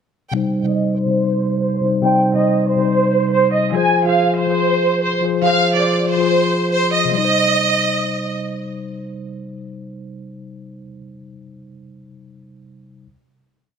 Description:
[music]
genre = hip hop, drill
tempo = 141 BPM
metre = 4/4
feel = half-time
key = C minor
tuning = A4 = 440 Hz
[part]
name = clear symphonic violin section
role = melody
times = 0.3-8.4 s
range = C5 to Ab5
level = -17 LUFS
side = right 2 dB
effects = low-pass filter, digital delay
[part]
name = mellow tine electric piano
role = accompaniment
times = 0.3-13.1 s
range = C3 to C5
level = -19 LUFS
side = moving between left 6 dB and right 2 dB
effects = auto-pan, low-pass filter
[sound]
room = moderate scoring stage reverb, RT60 1.6 s, small room reverb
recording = none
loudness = -15 LUFS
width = side -7 dB against mid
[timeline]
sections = 0.3-7.1 breakdown; 7.1-10.6 final chord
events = filter sweep 0.3-7.1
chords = 0.3 Cm; 3.7 Fm; 7.1 Cm

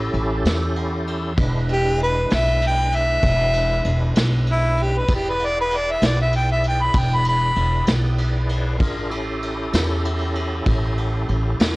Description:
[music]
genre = slow blues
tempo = 65 BPM (dotted quarters)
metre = 12/8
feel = straight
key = E mixolydian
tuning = A4 = 440 Hz
[part]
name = tonewheel organ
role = sustained chords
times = 0.0-11.8 s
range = G#3 to D5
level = -28 LUFS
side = equal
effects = slow rotary speaker, chorus vibrato
[part]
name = upright bass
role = bass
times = 0.0-11.8 s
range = E1 to E2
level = -22 LUFS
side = equal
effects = none
[part]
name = vintage brush drum kit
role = drums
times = 0.1-11.7 s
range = kick drum, ride cymbal, snare drum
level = -25 LUFS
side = equal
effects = none
[part]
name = breathy harmonica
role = melody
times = 1.7-7.9 s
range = E4 to B5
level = -20 LUFS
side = equal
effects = none
[sound]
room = small room ambience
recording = worn, warbling old tape, cassette tape, warbly pitch drift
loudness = -18 LUFS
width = side -22 dB against mid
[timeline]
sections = 0.0-11.8 A section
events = harmonica solo 0.0-11.8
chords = 0.0 A7; 1.4 E7; 8.8 A7

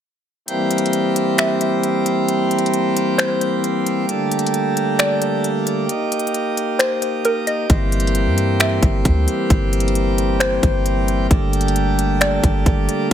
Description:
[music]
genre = hip hop, atmospheric cloud-rap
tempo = 133 BPM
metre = 4/4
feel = half-time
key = unclear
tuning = A4 = 438 Hz
[part]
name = pipe organ, plenum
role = sustained chords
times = 0.5-13.1 s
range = D3 to G4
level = -18 LUFS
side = equal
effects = sidechain pumping
[part]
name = trap drum kit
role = drums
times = 0.5-13.0 s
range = finger snaps, hi-hat, kick drum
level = -19 LUFS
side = equal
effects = none
[part]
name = hollow square pluck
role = melody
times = 1.4-13.1 s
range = Bb4 to E5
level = -22 LUFS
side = equal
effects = chorus, low-pass filter, ping-pong delay
[part]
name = soft 808-style bass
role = bass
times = 7.7-12.9 s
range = G1 to G2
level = -20 LUFS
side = equal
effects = none
[sound]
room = light reverb, digital ambience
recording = none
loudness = -16 LUFS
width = side -9 dB against mid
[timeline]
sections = 0.5-13.1 A section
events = kick muted 0.5-7.7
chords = 0.5 C7; 4.1 Gmadd9; 5.9 Eb; 7.7 C7/G; 11.3 Gmadd9

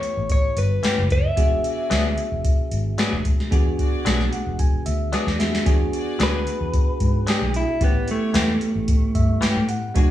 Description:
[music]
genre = straight-eighth soul blues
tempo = 112 BPM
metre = 4/4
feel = straight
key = E mixolydian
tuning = A4 = 439 Hz
[part]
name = direct-recorded clean electric guitar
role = melody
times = 0.0-9.7 s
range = A3 to E5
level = -25 LUFS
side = equal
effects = none
[part]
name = bell-like tine electric piano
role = accompaniment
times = 0.0-10.1 s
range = G#3 to G#5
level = -29 LUFS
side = right 1 dB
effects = none
[part]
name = rich symphonic string section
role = sustained chords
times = 0.0-10.1 s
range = C#4 to D5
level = -36 LUFS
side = left 1 dB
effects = none
[part]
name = soft vintage rhythm box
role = drums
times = 0.0-10.1 s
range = hi-hat, kick drum, snare drum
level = -21 LUFS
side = equal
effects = none
[part]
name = vintage muted fingered electric bass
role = bass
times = 0.2-10.1 s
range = E1 to A2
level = -24 LUFS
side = equal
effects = none
[part]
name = direct-recorded clean electric guitar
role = stabs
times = 0.8-9.6 s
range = E3 to G#4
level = -28 LUFS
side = left 3 dB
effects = none
[sound]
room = moderate stone room reverb, RT60 1.1 s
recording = band playing live in one room, studio reverb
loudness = -18 LUFS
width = side -13 dB against mid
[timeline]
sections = 0.0-5.7 A section; 5.7-10.1 B section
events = tine electric piano fill 4.1-5.7, 8.9-10.0; drum fill 5.1-5.7; clean electric guitar solo 5.7-10.1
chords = 0.0 A9; 1.4 E9; 7.8 A9

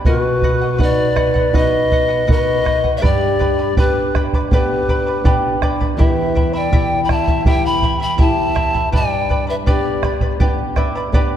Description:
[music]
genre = andean folk, Andean ensemble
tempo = 81 BPM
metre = 4/4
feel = straight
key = unclear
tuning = A4 = 440 Hz
[part]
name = charango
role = accompaniment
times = 0.0-11.4 s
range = E4 to B5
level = -24 LUFS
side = right 1 dB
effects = none
[part]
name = flamenco guitar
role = accompaniment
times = 0.0-11.4 s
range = E2 to E5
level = -22 LUFS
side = right 1 dB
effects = none
[part]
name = bombo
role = percussion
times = 0.0-11.3 s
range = none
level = -17 LUFS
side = right 1 dB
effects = none
[part]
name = breathy hollow pan flute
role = melody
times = 0.1-10.4 s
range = B4 to B5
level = -20 LUFS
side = left 1 dB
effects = none
[part]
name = mellow large quena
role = second line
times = 0.1-10.4 s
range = F#4 to G5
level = -22 LUFS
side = left 3 dB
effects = none
[sound]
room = wet concert hall reverb, RT60 2.3 s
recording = dark, warm production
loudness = -14 LUFS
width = side -10 dB against mid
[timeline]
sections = 0.0-11.4 A section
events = nylon-string guitar fill 10.4-11.4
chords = 0.1 B; 3.0 G; 6.0 Em; 8.9 G

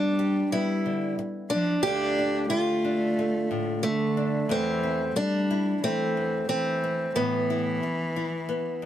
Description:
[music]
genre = acoustic folk duo or small band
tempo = 90 BPM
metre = 4/4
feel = straight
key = D dorian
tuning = A4 = 439 Hz
[part]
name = picked old ladder-braced acoustic guitar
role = melody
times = 0.0-8.9 s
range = A3 to G4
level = -27 LUFS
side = right 1 dB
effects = none
[part]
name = warm cello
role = second line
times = 0.0-8.9 s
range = D3 to D4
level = -30 LUFS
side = left 1 dB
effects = none
[part]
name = nylon-string guitar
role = accompaniment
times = 0.0-8.9 s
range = D2 to G4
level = -31 LUFS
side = left 2 dB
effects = none
[sound]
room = little or no reverb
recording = close, detailed microphones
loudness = -24 LUFS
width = side -11 dB against mid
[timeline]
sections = 0.0-8.9 A section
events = none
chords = 0.0 G; 1.8 Dm; 4.5 C6/E; 7.2 Asus2

